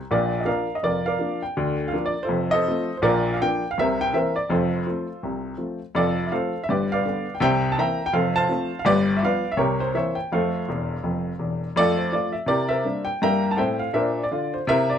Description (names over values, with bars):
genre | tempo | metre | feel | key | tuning
jazz, stride piano | 165 BPM | 4/4 | swing 60% on 8ths | Bb major, F major from 5.9 s | A4 = 441 Hz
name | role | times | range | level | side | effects
warm baby grand piano | solo | 0.1-15.0 s | E1 to Bb5 | -21 LUFS | equal | none
room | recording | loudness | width
light reverb | close, detailed microphones | -21 LUFS | side -8 dB against mid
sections
0.1-11.8 A section; 11.8-15.0 B section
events
grand piano fill 10.7-11.8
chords
0.1 Bb; 1.6 Bb/D; 2.3 F7; 3.0 Bb; 3.8 C7; 4.5 F; 6.7 G7; 7.4 C7; 8.1 F; 8.9 G7; 9.6 C7b9; 10.3 F; 12.5 C9; 13.2 C7/G